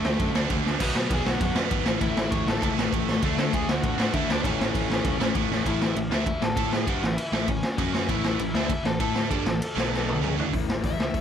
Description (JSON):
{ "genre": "punk rock", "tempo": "197 BPM", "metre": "4/4", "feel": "straight", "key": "A major", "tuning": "A4 = 438 Hz", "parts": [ { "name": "bluesy overdriven lead guitar", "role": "melody", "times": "0.0-11.2 s", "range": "A3 to C#6", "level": "-32 LUFS", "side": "left 3 dB", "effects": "distortion" }, { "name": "biting overdriven guitar", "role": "riff", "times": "0.0-10.5 s", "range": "A2 to A4", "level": "-30 LUFS", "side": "right 17 dB", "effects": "none" }, { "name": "raw garage guitar", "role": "riff", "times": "0.0-11.2 s", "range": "A2 to A4", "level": "-30 LUFS", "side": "left 14 dB", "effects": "overdrive" }, { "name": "fuzz picked electric bass", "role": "bass", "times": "0.0-11.2 s", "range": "G#1 to D3", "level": "-32 LUFS", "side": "equal", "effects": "overdrive" }, { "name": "raw garage drum kit", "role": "drums", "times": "0.0-11.2 s", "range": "crash cymbal, hi-hat, kick drum, ride cymbal, snare drum, toms", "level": "-26 LUFS", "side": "right 1 dB", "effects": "none" } ], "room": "light reverb", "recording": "none", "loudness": "-23 LUFS", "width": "side -8 dB against mid", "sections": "0.0-5.7 A section; 5.7-10.5 B section", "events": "drum fill 0.6, 5.5, 9.9-10.5", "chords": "0.0 D; 0.8 B5; 1.9 A; 3.2 D; 4.4 A; 7.8 F#5; 8.1 A5; 9.8 B5; 10.2 A" }